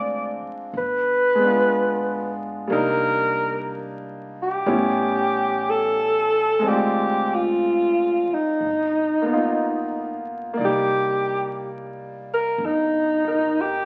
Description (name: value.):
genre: jazz ballad.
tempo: 61 BPM.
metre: 4/4.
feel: swing 68% on 8ths.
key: C minor.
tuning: A4 = 439 Hz.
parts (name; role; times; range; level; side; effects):
breathy alto saxophone; melody; 0.0-13.9 s; Eb4 to D5; -23 LUFS; equal; none.
clear concert grand piano; accompaniment; 0.0-13.9 s; G3 to D5; -28 LUFS; equal; none.
upright bass; bass; 0.0-13.9 s; G1 to D2; -37 LUFS; equal; none.
room: wet large studio reverb, RT60 1.2 s.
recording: very old 78 rpm record, vinyl crackle, nothing above 10.5 kHz.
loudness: -22 LUFS.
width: mono.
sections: 0.0-10.6 A section; 10.6-13.9 A section.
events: none.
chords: 0.0 Dm7b5; 0.7 G7b9; 2.7 Cm7; 4.7 A7; 6.6 Dm7b5; 8.6 G7alt; 10.6 Cm7.